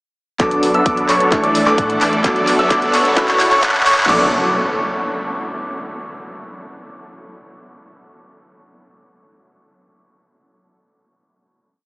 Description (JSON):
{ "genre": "EDM, festival progressive house", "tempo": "130 BPM", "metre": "4/4", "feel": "straight", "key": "B minor", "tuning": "A4 = 438 Hz", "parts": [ { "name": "felt-muted upright piano", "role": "accompaniment", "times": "0.4-4.3 s", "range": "A3 to A4", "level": "-23 LUFS", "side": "equal", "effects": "sidechain pumping, analog delay" }, { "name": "lush unison pad", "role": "sustained chords", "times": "0.8-4.3 s", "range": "A4 to D6", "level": "-25 LUFS", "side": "equal", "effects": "none" }, { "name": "bright baby grand piano", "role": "arpeggios", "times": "0.4-4.3 s", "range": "B5 to F#6", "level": "-19 LUFS", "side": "equal", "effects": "sidechain pumping, analog delay" }, { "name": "supersaw chords", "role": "riff", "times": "0.4-4.3 s", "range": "E3 to F#5", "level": "-20 LUFS", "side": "equal", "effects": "sidechain pumping, low-pass filter, analog delay" }, { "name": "saturated sub bass", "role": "bass", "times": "0.4-4.3 s", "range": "F#1 to A2", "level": "-36 LUFS", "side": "equal", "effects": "sidechain pumping" }, { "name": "big-room dance drum kit", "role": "drums", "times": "0.4-4.2 s", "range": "crash cymbal, kick drum, snare drum", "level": "-22 LUFS", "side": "equal", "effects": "overdrive" }, { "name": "house drum kit", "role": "drums", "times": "0.4-4.1 s", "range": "handclaps, hi-hat", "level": "-21 LUFS", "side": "equal", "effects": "none" }, { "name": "riser and impact", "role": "sound effects", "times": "2.8-5.9 s", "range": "none", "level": "-33 LUFS", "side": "equal", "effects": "none" } ], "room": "wet cathedral reverb, RT60 6.5 s", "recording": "dreamy mix soaked in reverb, high-pass filter, small speaker sound", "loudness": "-13 LUFS", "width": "side -27 dB against mid", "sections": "0.4-4.1 build; 4.1-5.9 final chord", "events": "build-up 0.4-4.1; drum fill 0.4-4.1; filter sweep on supersaw synth 0.4-4.1; filter sweep 0.4-4.1", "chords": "0.4 Bm7; 1.3 Asus4; 2.2 Bm7; 3.2 F#m7; 4.1 Bm7" }